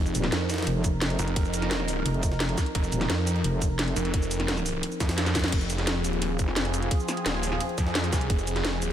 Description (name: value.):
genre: dark technical drum and bass.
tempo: 173 BPM.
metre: 4/4.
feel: straight.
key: F minor.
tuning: A4 = 439 Hz.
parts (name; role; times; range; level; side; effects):
sweeping resonant pad; sustained chords; 0.0-8.9 s; F3 to Bb4; -31 LUFS; right 1 dB; chorus, sidechain pumping.
snarling distorted saw bass; bass; 0.0-8.9 s; Eb1 to F2; -29 LUFS; equal; distortion, tube saturation.
metallic wobble bass; bass; 0.1-4.0 s; Eb1 to F1; -28 LUFS; equal; chorus, tube saturation.
drum and bass drum kit; drums; 0.1-8.9 s; crash cymbal, hi-hat, shaker, snare drum; -30 LUFS; equal; none.
jungle sampler-style drum kit; drums; 0.1-8.9 s; ride cymbal, snare drum; -39 LUFS; right 1 dB; none.
electronic kick drum; drums; 0.8-8.4 s; none; -26 LUFS; equal; none.
room: light reverb.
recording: none.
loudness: -24 LUFS.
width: side -10 dB against mid.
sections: 0.0-5.5 A section; 5.5-8.9 A section.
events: drop 0.0-5.5, 5.5-8.9; drum fill 5.2-5.5.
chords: 0.0 F5; 5.5 Fm.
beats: 0.32 0.67 1.02 | 1.36 1.71 2.06 2.40 | 2.75 3.10 3.44 3.79 | 4.14 4.48 4.83 5.18 | 5.52 5.87 6.22 6.57 | 6.91 7.26 7.61 7.95 | 8.30 8.65.